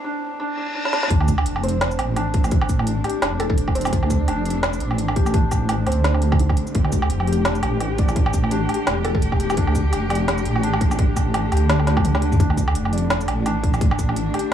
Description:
half-time drum and bass; 170 BPM; 4/4; swing 57% on 16ths, half-time; D minor; A4 = 439 Hz
felt-muted upright piano; arpeggios; 0.0-14.5 s; D3 to D5; -28 LUFS; left 1 dB; analog delay
reverse cymbal and sub drop; sound effects; 0.5-2.5 s; -29 LUFS; left 1 dB
organic electronic drum kit; drums; 0.9-14.5 s; hi-hat, shaker, snare drum, toms, woodblock; -25 LUFS; right 1 dB; overdrive
warm studio cello section; sustained chords; 1.1-14.5 s; D3 to G4; -27 LUFS; equal; vintage 12-bit sampler grit, sidechain pumping
deep soft wobble bass; bass; 1.1-14.3 s; E1 to D2; -22 LUFS; equal; chorus
electronic kick drum; drums; 1.1-14.1 s; -20 LUFS; equal
mallet-like synth pluck; melody; 3.4-3.5, 9.0-9.2 s; A4; -34 LUFS; left 3 dB
digital ambience; dry, gritty hardware recording, high-pass filter, small room ambience; -18 LUFS; side -9 dB against mid
0.0-1.1 A section; 1.1-14.5 B section
break 0.0-1.1; build-up 0.0-1.1; filter sweep 0.0-1.1; reverse cymbal 0.5-1.1; drum fill 0.8, 12.0-12.4; drop 1.1-14.5; impact 1.1-2.5; kick drops out 12.0-12.4
0.0 D5

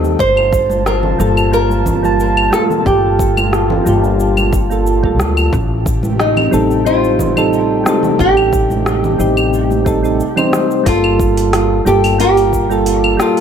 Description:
sunset chillout; 90 BPM; 4/4; straight; G minor; A4 = 439 Hz
soft electric-piano-like synth keys; accompaniment; 0.0-13.4 s; G3 to A5; -16 LUFS; moving between left 5 dB and right 4 dB; chorus, auto-pan, digital delay
airy breathy pad; sustained chords; 0.0-13.4 s; Bb2 to A5; -22 LUFS; right 2 dB; chorus
upright bass; bass; 0.0-13.2 s; G1 to Eb2; -18 LUFS; equal
smooth R&B drum kit; drums; 0.0-13.4 s; cabasa, claves, hi-hat, rim click; -20 LUFS; left 1 dB
nylon-string guitar; melody; 0.2-13.4 s; Eb4 to C5; -17 LUFS; right 2 dB; ping-pong delay
electronic kick drum; drums; 0.2-12.7 s; -19 LUFS; equal
congas; percussion; 0.7-10.7 s; -24 LUFS; right 2 dB
light reverb; -11 LUFS; side -8 dB against mid
0.0-10.9 A section; 10.9-13.4 B section
0.2 Gm9; 5.5 Am7b5; 10.9 Gm9

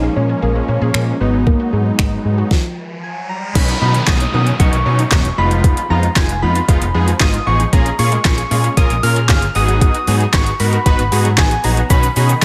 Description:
dance-pop; 115 BPM; 4/4; straight; G# dorian; A4 = 440 Hz
soft struck synth lead; melody; 0.0-12.4 s; E#3 to E#6; -23 LUFS; equal; chorus, tape echo
big bright polysynth; accompaniment; 0.0-12.4 s; E#3 to B4; -23 LUFS; equal; chorus
unison pluck; arpeggios; 0.0-12.4 s; D#3 to G#4; -30 LUFS; equal; sidechain pumping, tape echo
vintage muted fingered electric bass; bass; 0.0-12.4 s; E1 to B2; -19 LUFS; equal; sidechain pumping
smooth R&B drum kit; drums; 0.9-12.4 s; crash cymbal, finger snaps, handclaps, hi-hat, kick drum, shaker, snare drum; -17 LUFS; equal; overdrive
riser and downlifter; sound effects; 2.6-7.7 s; -29 LUFS; equal
light reverb; -15 LUFS; mono
0.0-3.6 A section; 3.6-12.4 B section
riser 2.6-3.6; stop 2.5-3.6
0.0 A#m7; 1.2 G#m7; 2.5 N.C.; 3.6 Badd9; 5.4 Fm7b5; 7.7 A#m7; 9.6 G#m7; 11.9 Badd9

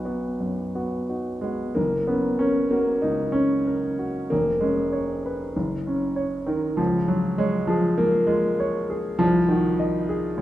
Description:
classical, romantic character piece for solo piano; 97 BPM; 4/4; uneven beats, rubato; F# major; A4 = 440 Hz
warm concert grand piano; solo; 0.0-10.4 s; E#1 to D#5; -21 LUFS; equal
wet recital hall reverb, RT60 1.6 s; minimal, uncompressed stereo recording; -21 LUFS; side -14 dB against mid
0.0-1.8 A section; 1.8-10.4 B section
0.0 B; 1.8 F#; 4.3 C#7/E#; 5.5 F#; 6.8 C#; 9.2 G#7/B#

